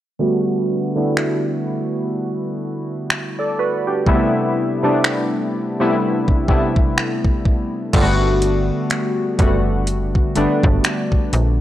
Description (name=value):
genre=contemporary R&B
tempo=62 BPM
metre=4/4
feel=swing 58% on 16ths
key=G major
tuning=A4 = 440 Hz
part: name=warm analog keys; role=accompaniment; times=0.2-11.6 s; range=C3 to D5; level=-18 LUFS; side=equal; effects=chorus, low-pass filter
part: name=smooth R&B drum kit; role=drums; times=1.2-11.6 s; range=crash cymbal, finger snaps, hi-hat, kick drum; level=-18 LUFS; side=equal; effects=none
part: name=slap-like FM bass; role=bass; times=7.9-11.6 s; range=F#1 to Bb1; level=-19 LUFS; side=equal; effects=none
room=digital ambience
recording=dry, gritty hardware recording, transformer saturation, cassette tape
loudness=-16 LUFS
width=side -13 dB against mid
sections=0.2-7.9 A section; 7.9-11.6 B section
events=filter sweep on synth keys 0.2-7.9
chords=0.2 Gmaj7; 4.1 Am7; 7.9 Gmaj7